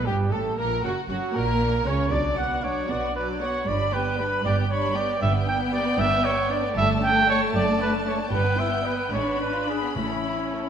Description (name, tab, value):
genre	quick classical-period movement for symphony orchestra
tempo	77 BPM (dotted quarters)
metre	6/8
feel	rubato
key	unclear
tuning	A4 = 442 Hz
part	rich studio violin section	melody	0.0-10.7 s	F#4 to B5	-33 LUFS	left 5 dB	none
part	warm studio violin section	second line	0.0-10.7 s	G3 to C#5	-32 LUFS	left 3 dB	none
part	rich studio viola section	accompaniment	0.0-10.7 s	F#3 to D4	-30 LUFS	equal	none
part	warm trumpet	stabs	0.0-10.7 s	E4 to G5	-25 LUFS	right 2 dB	none
part	rich studio cello section	bass	0.0-10.6 s	F#2 to C#3	-30 LUFS	right 2 dB	none
part	warm studio double bass section	bass	0.0-10.6 s	F#1 to C#2	-31 LUFS	right 3 dB	none
part	timpani	percussion	10.0-10.7 s	A2	-35 LUFS	left 2 dB	none
room	moderate scoring stage reverb, RT60 1.6 s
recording	none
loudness	-21 LUFS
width	side -8 dB against mid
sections	0.0-10.7 A section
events	none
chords	0.0 N.C.; 0.6 F#; 2.1 Bm; 3.7 G; 6.8 A7/G; 7.5 D/F#; 8.3 Em/G; 9.1 G#dim; 10.0 A